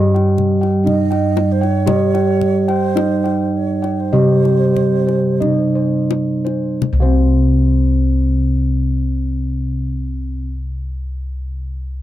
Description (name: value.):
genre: Javanese gamelan.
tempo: 41-65 BPM.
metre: 4/4.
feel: straight.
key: unclear.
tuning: A4 = 441 Hz.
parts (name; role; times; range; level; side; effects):
gamelan-type bronze metallophone; melody; 0.0-10.5 s; C4 to G4-30c; -20 LUFS; right 1 dB; none.
gamelan-type bronze metallophone; accompaniment; 0.0-10.4 s; C3 to G3-30c; -20 LUFS; right 2 dB; none.
gamelan-type bossed gongs; arpeggios; 0.0-10.5 s; C5 to G5-30c; -25 LUFS; left 4 dB; none.
gamelan-type bossed gongs; bass; 0.0-10.4 s; C2 to G4-30c; -18 LUFS; left 1 dB; none.
kendang; percussion; 0.2-7.5 s; none; -24 LUFS; left 9 dB; none.
breathy mellow xiao; second line; 0.9-5.8 s; C5 to Eb5-31c; -24 LUFS; right 12 dB; none.
room: light reverb.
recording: dry, close 1970s-style studio recording.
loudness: -14 LUFS.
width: side -13 dB against mid.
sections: 0.0-6.8 A section; 6.8-12.0 B section.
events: slowing down 0.0-6.8.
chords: none.